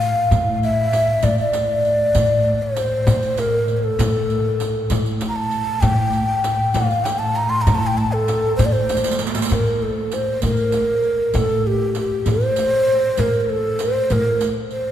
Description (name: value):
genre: Arabic maqam ensemble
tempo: 65 BPM (dotted quarters)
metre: 6/8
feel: straight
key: A maqam kurd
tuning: A4 = 440 Hz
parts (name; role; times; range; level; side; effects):
- breathy mellow ney; melody; 0.0-14.9 s; G4 to C6; -19 LUFS; equal; none
- upright bass; bass; 0.0-14.3 s; A2; -23 LUFS; equal; none
- clear double bass; drone; 0.0-9.6 s; A2; -26 LUFS; equal; none
- riq; percussion; 0.0-14.8 s; none; -31 LUFS; right 5 dB; none
- frame drum; percussion; 0.3-14.6 s; none; -26 LUFS; left 2 dB; none
room: wet church reverb, RT60 3.8 s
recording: recorded in a church or concert hall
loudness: -16 LUFS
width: side -10 dB against mid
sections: 0.0-9.5 A section; 9.5-14.9 B section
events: drum fill 8.9-9.5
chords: none